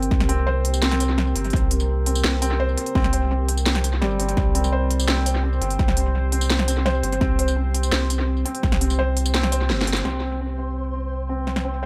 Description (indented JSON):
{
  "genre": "half-time drum and bass",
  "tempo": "169 BPM",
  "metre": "4/4",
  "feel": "half-time",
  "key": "unclear",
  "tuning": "A4 = 440 Hz",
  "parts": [
    { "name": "deep dark ambient pad", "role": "sustained chords", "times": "0.0-11.9 s", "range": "C4 to C5", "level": "-33 LUFS", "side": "equal", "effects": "chorus, built-in reverb, vintage 12-bit sampler grit, sidechain pumping" },
    { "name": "felt-muted upright piano", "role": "arpeggios", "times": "0.0-11.9 s", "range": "G3 to C5", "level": "-29 LUFS", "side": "equal", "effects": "vintage 12-bit sampler grit, low-pass filter, tape echo" },
    { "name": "saturated sub bass", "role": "bass", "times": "0.0-11.9 s", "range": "G1 to C2", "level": "-25 LUFS", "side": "equal", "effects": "none" },
    { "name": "drum and bass drum kit", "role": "drums", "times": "0.0-11.6 s", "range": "hi-hat, snare drum, tambourine", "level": "-28 LUFS", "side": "equal", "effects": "small room ambience, analog delay" },
    { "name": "electronic kick drum", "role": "drums", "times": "0.1-8.7 s", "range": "none", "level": "-25 LUFS", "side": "equal", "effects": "small room ambience" },
    { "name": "flickering grainy texture", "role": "texture", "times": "10.3-11.9 s", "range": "C5", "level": "-37 LUFS", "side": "equal", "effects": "built-in reverb" }
  ],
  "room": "light reverb, digital ambience",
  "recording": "echo-heavy mix",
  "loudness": "-22 LUFS",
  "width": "mono",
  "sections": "0.0-10.1 A section; 10.1-11.9 B section",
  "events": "drop 0.0-10.1; drum fill 9.7-10.1; band accent 9.9",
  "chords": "0.0 C5"
}